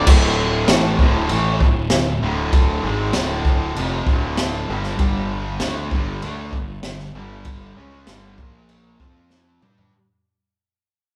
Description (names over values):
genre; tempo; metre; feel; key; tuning
garage rock duo or trio; 97 BPM; 4/4; straight; unclear; A4 = 437 Hz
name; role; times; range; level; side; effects
fuzz guitar; riff; 0.0-9.9 s; D2 to G4; -26 LUFS; equal; distortion
fuzz fingered electric bass; bass; 0.0-9.9 s; D1 to G2; -27 LUFS; equal; overdrive
crunchy breakbeat drum kit; drums; 0.1-9.9 s; crash cymbal, kick drum, snare drum, toms; -21 LUFS; equal; none
room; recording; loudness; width
moderate large studio reverb, RT60 1.1 s; band playing live in one room; -20 LUFS; mono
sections
0.1-9.9 A section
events
fade-out 0.1-9.9; drum fill 9.3-9.9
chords
0.1 D5; 5.0 G5; 8.4 Bb5; 9.0 F5; 9.6 G5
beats
| 0.07 0.69 1.30 1.92 | 2.53 3.15 3.77 4.38 | 5.00 5.62 6.23 6.85 | 7.47 8.09 8.70 9.32